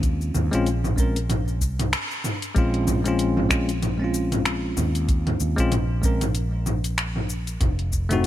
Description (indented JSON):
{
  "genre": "sunset chillout",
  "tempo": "95 BPM",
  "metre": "4/4",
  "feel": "swing 57% on 16ths",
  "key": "Bb minor",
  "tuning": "A4 = 439 Hz",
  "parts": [
    { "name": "bell-like tine electric piano", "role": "accompaniment", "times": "0.0-8.3 s", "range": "Ab3 to Bb4", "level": "-26 LUFS", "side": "left 1 dB", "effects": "auto-pan, tape echo" },
    { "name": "fretless electric bass", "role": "bass", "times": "0.0-8.3 s", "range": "F1 to Eb2", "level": "-25 LUFS", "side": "equal", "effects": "none" },
    { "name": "deep house drum kit", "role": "drums", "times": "0.0-8.3 s", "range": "cabasa, finger snaps, hi-hat, toms", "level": "-27 LUFS", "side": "equal", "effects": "overdrive" },
    { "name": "electronic kick drum", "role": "drums", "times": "0.0-8.1 s", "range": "none", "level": "-23 LUFS", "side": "equal", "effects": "none" }
  ],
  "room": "light reverb",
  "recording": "none",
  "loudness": "-21 LUFS",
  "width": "side -13 dB against mid",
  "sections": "0.0-2.6 A section; 2.6-8.3 B section",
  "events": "break 1.9-2.6; band accent 1.9-2.2",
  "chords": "0.0 Bbm9; 7.6 F7b9"
}